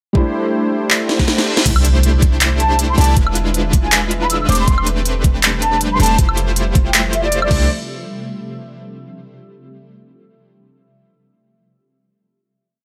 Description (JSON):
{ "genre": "future bass", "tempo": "159 BPM", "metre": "4/4", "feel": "swing 54% on 16ths, half-time", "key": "C major", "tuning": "A4 = 443 Hz", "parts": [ { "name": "felt-muted upright piano", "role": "accompaniment", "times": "0.1-1.7 s", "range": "G3 to E4", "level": "-25 LUFS", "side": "equal", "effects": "sidechain pumping, tape echo" }, { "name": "big bright polysynth", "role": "riff", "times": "0.1-7.7 s", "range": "G#3 to D5", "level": "-23 LUFS", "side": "equal", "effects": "chorus, sidechain pumping, tape echo" }, { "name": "electronic kick drum", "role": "drums", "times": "0.2-7.6 s", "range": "none", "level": "-17 LUFS", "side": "equal", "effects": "none" }, { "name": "trap drum kit", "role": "drums", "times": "0.9-7.6 s", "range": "crash cymbal, handclaps, hi-hat, snare drum, woodblock", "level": "-20 LUFS", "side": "equal", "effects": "none" }, { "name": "reverse cymbal and impact", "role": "sound effects", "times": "1.1-3.2 s", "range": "none", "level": "-27 LUFS", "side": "equal", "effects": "none" }, { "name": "shimmering ambient pad", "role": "sustained chords", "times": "2.5-7.7 s", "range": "C3 to E5", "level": "-31 LUFS", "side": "equal", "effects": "chorus, built-in reverb, phaser, sidechain pumping" }, { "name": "warm 808-style bass", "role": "bass", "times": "1.7-7.7 s", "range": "E1 to C2", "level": "-20 LUFS", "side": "equal", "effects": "sidechain pumping" }, { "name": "mellow concert flute", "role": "melody", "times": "2.6-7.7 s", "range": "D5 to E6", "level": "-22 LUFS", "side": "equal", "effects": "vintage 12-bit sampler grit, sidechain pumping, tape echo" } ], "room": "light reverb", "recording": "none", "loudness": "-15 LUFS", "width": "mono", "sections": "0.1-1.7 intro; 1.7-7.7 drop; 7.7-9.2 final hit", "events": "reverse cymbal 1.1-1.7; drum fill 1.1-1.7; kick drops out 1.3-1.7; drop 1.7-7.7; impact 1.7-3.2", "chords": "0.1 C69; 3.2 E7b9; 4.5 Am11/E; 6.2 Fmaj9; 7.5 C69; 7.7 N.C." }